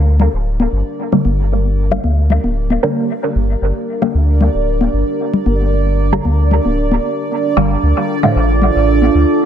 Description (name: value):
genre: dub techno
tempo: 114 BPM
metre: 4/4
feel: straight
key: G minor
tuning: A4 = 436 Hz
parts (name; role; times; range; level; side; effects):
- deep dark ambient pad; sustained chords; 0.1-9.5 s; D4 to Bb4; -20 LUFS; right 2 dB; chorus, built-in reverb
- filtered dub chord stab; stabs; 0.0-9.5 s; A2 to Bb3; -19 LUFS; equal; phaser, vintage 12-bit sampler grit, dub echo
- pure sine sub bass; bass; 0.0-9.2 s; D1 to D2; -14 LUFS; equal; tube saturation
- bubbling stepped-filter texture; texture; 1.0-9.5 s; D5; -23 LUFS; right 8 dB; chorus, built-in reverb
- congas; percussion; 0.2-9.1 s; none; -21 LUFS; left 4 dB; dub echo
room: light reverb, digital ambience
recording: dense, heavily limited modern master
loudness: -12 LUFS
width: side -9 dB against mid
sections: 0.0-9.5 A section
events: none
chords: 0.0 Gm; 7.8 Dm